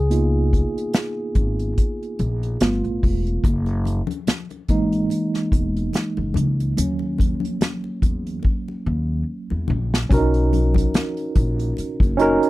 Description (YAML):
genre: R&B, neo-soul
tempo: 72 BPM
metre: 4/4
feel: swing 56% on 16ths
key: B major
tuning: A4 = 440 Hz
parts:
  - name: tine electric piano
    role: accompaniment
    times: 0.0-12.5 s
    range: E3 to A#4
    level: -23 LUFS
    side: right 2 dB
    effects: medium stereo tremolo
  - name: upright bass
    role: bass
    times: 0.0-12.4 s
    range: E1 to E2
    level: -22 LUFS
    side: equal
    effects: none
  - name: unplugged drum kit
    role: drums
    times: 0.1-12.5 s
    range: hi-hat, kick drum, snare drum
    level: -20 LUFS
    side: equal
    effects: none
  - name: congas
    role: percussion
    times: 3.4-12.2 s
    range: none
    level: -30 LUFS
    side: left 7 dB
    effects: none
room: little or no reverb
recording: dry, close 1970s-style studio recording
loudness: -19 LUFS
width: side -18 dB against mid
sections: 0.0-10.1 A section; 10.1-12.5 B section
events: tine electric piano solo 0.0-10.1; drum fill 8.4-10.1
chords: 0.0 C#13; 2.6 G9; 3.4 F#13; 6.8 D#m7; 10.1 Bmaj9